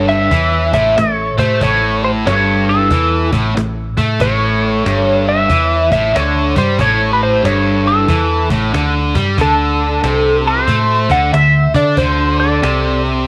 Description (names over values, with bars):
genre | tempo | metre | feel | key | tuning
blues rock power trio and southern rock | 93 BPM | 4/4 | swing 65% on 8ths | unclear | A4 = 438 Hz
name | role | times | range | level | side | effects
lightly driven lead guitar | melody | 0.0-13.0 s | A4 to F#5 | -18 LUFS | equal | wah
biting lead guitar | second line | 0.0-13.0 s | D4 to D5 | -30 LUFS | equal | overdrive
distorted electric guitar | riff | 0.0-13.3 s | G2 to D4 | -19 LUFS | equal | overdrive
vintage muted picked electric bass | bass | 0.0-13.2 s | G1 to D3 | -21 LUFS | equal | none
cajon | drums | 0.1-13.1 s | none | -24 LUFS | equal | none
room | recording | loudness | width
light reverb | none | -14 LUFS | mono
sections
0.0-13.3 A section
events
none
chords
0.0 A7; 9.4 D7